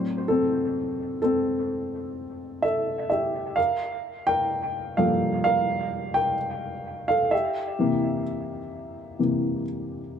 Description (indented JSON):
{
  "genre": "pop",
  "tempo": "64 BPM",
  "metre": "4/4",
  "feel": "straight",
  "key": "unclear",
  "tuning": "A4 = 440 Hz",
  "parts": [
    { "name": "dark baby grand piano", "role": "solo", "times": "0.0-10.2 s", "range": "G2 to G5", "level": "-24 LUFS", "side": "equal", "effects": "dub echo" }
  ],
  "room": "moderate spring reverb, RT60 1.3 s",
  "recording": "echo-heavy mix",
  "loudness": "-23 LUFS",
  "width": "side -8 dB against mid",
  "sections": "0.0-10.2 A section",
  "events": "grand piano solo 0.0-10.2",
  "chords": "0.0 Am6; 3.6 Gm7; 7.3 C7"
}